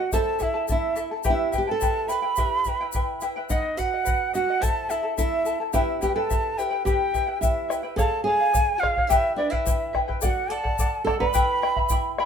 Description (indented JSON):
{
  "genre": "andean folk, Andean ensemble",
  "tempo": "107 BPM",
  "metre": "2/4",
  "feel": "straight",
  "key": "E harmonic minor, E dorian from 8.0 s",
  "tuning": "A4 = 440 Hz",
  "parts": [
    { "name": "hollow quena", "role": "melody", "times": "0.0-12.1 s", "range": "D5 to B5", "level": "-25 LUFS", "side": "right 1 dB", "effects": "none" },
    { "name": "nylon-string guitar", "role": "second line", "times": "0.0-12.1 s", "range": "D4 to B4", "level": "-29 LUFS", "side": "right 3 dB", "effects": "none" },
    { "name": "charango", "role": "accompaniment", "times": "0.0-12.3 s", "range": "E4 to B5", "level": "-28 LUFS", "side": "left 3 dB", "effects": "none" },
    { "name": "bombo", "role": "percussion", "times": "0.1-12.3 s", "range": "none", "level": "-27 LUFS", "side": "equal", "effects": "none" },
    { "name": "egg shaker", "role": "percussion", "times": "0.1-12.0 s", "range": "none", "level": "-35 LUFS", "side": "left 5 dB", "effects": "none" }
  ],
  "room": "moderate studio reverb, RT60 0.8 s",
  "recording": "minimal, uncompressed stereo recording",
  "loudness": "-21 LUFS",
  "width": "side -7 dB against mid",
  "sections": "0.0-8.0 A section; 8.0-12.3 B section",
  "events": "none",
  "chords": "0.1 Am; 1.3 Em; 3.5 B; 4.6 Am; 5.7 Em; 8.0 C#; 9.1 Em; 10.2 D; 11.3 Em",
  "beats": "| 0.12 0.69 | 1.25 1.81 | 2.38 2.94 | 3.50 4.06 | 4.62 5.18 | 5.75 6.31 | 6.87 7.43 | 7.99 8.55 | 9.11 9.66 | 10.22 10.78 | 11.34 11.90"
}